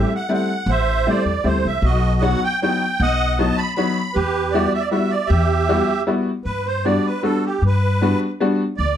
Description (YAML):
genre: musette waltz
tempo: 156 BPM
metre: 3/4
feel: swing 53% on 8ths, rubato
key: E minor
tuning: A4 = 440 Hz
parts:
  - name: musette accordion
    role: melody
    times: 0.0-9.0 s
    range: F#4 to B5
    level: -21 LUFS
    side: right 3 dB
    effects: slapback echo
  - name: bright upright piano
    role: accompaniment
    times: 0.0-8.6 s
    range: F#3 to F#4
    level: -20 LUFS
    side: left 2 dB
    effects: none
  - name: upright bass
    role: bass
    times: 0.0-9.0 s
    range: A1 to G2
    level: -20 LUFS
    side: equal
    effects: none
room: light reverb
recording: dark, warm production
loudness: -17 LUFS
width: side -10 dB against mid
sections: 0.0-6.5 A section; 6.5-9.0 B section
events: none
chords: 0.0 Am7; 1.8 B; 4.1 Emadd9; 6.5 Gmaj7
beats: 0.30 | 0.68 1.06 1.45 | 1.84 2.23 2.62 | 3.00 3.38 3.77 | 4.15 4.53 4.90 | 5.29 5.67 6.07 | 6.46 6.85 7.24 | 7.63 8.02 8.40 | 8.78